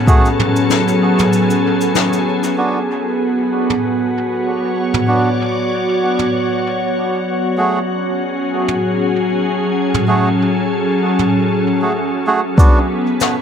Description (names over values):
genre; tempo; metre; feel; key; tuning
ambient dub; 96 BPM; 4/4; swing 56% on 16ths; B dorian; A4 = 439 Hz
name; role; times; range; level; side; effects
soft additive organ-like pad; sustained chords; 0.0-13.4 s; F#3 to D5; -16 LUFS; equal; ensemble chorus, built-in reverb
drifting glass-harmonics texture; texture; 0.0-12.6 s; F#3 to B4; -23 LUFS; left 1 dB; chorus, built-in reverb
melodica; stabs; 0.1-12.8 s; A3 to G#4; -20 LUFS; right 3 dB; dub echo
electronic kick drum; drums; 0.1-0.2, 12.6-12.7 s; none; -10 LUFS; equal; overdrive
jazz brush drum kit; drums; 0.1-13.3 s; cabasa, snare drum, toms; -21 LUFS; left 2 dB; dub echo
room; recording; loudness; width
moderate spring reverb, RT60 1.6 s, studio reverb; echo-heavy mix; -14 LUFS; side -8 dB against mid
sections
0.0-2.6 A section; 2.6-12.6 B section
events
break 1.3-2.6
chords
0.0 F#madd9; 2.6 Bm; 7.6 F#madd9; 12.6 Bm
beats
| 0.08 0.70 1.33 1.95 | 2.58 3.20 3.83 4.45 | 5.08 5.70 6.33 6.95 | 7.58 8.20 8.83 9.45 | 10.08 10.70 11.33 11.95 | 12.58 13.20